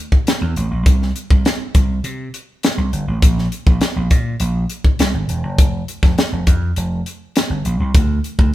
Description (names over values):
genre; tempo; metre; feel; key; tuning
polished 1980s jazz-funk pop; 102 BPM; 4/4; straight; unclear; A4 = 440 Hz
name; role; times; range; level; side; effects
crisp fusion drum kit; drums; 0.1-8.5 s; hi-hat, kick drum, snare drum; -15 LUFS; equal; none
vintage slap bass; bass; 0.4-8.5 s; E1 to C3; -19 LUFS; equal; none
room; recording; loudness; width
light reverb; band playing live in one room; -15 LUFS; side -15 dB against mid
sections
0.0-8.5 A section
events
none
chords
none